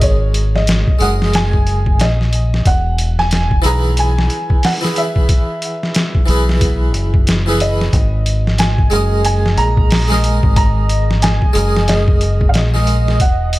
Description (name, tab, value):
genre	trip hop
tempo	91 BPM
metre	4/4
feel	swing 60% on 16ths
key	unclear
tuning	A4 = 440 Hz
part	felt-muted upright piano	melody	0.0-13.6 s	Db5 to Bb5	-22 LUFS	right 1 dB	tape echo
part	harpsichord	accompaniment	0.0-13.2 s	E3 to Eb5	-20 LUFS	right 1 dB	tremolo
part	deep dub fingered electric bass	bass	0.0-13.6 s	E1 to B1	-15 LUFS	equal	tube saturation
part	trip hop sampler-style drum kit	drums	0.0-13.6 s	hi-hat, kick drum, snare drum	-15 LUFS	equal	none
part	warbly tape-like pad	sustained chords	8.5-13.6 s	Eb5	-27 LUFS	right 2 dB	chorus, built-in reverb, phaser
room	little or no reverb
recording	none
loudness	-12 LUFS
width	side -18 dB against mid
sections	0.0-13.6 A section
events	none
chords	0.0 Absus2; 2.7 E; 7.9 Absus2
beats	| 0.02 0.68 1.33 1.99 | 2.65 3.31 3.97 4.63 | 5.29 5.95 6.61 7.27 | 7.93 8.59 9.25 9.91 | 10.57 11.22 11.88 12.54 | 13.20